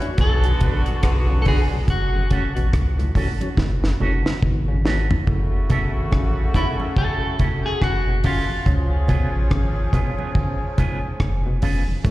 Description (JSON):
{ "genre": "roots reggae", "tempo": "71 BPM", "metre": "4/4", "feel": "swing 60% on 16ths", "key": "F# minor", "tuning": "A4 = 442 Hz", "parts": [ { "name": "clean electric guitar", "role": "melody", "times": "0.0-9.5 s", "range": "E4 to A4", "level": "-28 LUFS", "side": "equal", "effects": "spring reverb, dub echo, slapback echo" }, { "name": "mellow horn section", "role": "second line", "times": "0.0-12.1 s", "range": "C#3 to G#4", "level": "-30 LUFS", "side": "left 1 dB", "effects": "dub echo, slapback echo" }, { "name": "mellow tonewheel organ", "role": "accompaniment", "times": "0.0-5.2 s", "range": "F#2 to F#4", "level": "-32 LUFS", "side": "left 1 dB", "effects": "overdrive, chorus vibrato, slow rotary speaker, dub echo, slapback echo" }, { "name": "deep reggae drum kit", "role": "drums", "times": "0.0-12.1 s", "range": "hi-hat, kick drum, rim click, snare drum, toms", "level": "-22 LUFS", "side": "equal", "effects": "none" }, { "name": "soft dub sub bass", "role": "bass", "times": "0.2-12.1 s", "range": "E#1 to C#2", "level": "-21 LUFS", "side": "equal", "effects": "none" }, { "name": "congas", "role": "percussion", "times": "0.2-12.1 s", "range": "none", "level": "-29 LUFS", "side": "right 2 dB", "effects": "none" }, { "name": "electric guitar with an envelope filter", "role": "accompaniment", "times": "0.6-11.8 s", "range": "B3 to B4", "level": "-32 LUFS", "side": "right 5 dB", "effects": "tremolo, dub echo, slapback echo" }, { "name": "muted clav", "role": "arpeggios", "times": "1.0-12.1 s", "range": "G#2 to E3", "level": "-30 LUFS", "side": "left 2 dB", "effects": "slapback echo" } ], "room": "studio reverb", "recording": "live gig heard through the venue's PA, recital hall reverb", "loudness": "-18 LUFS", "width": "side -17 dB against mid", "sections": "0.0-5.3 A section; 5.3-12.1 B section", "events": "drum fill 3.6-5.3", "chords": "0.0 Bm; 1.9 F#m7; 8.7 C#7" }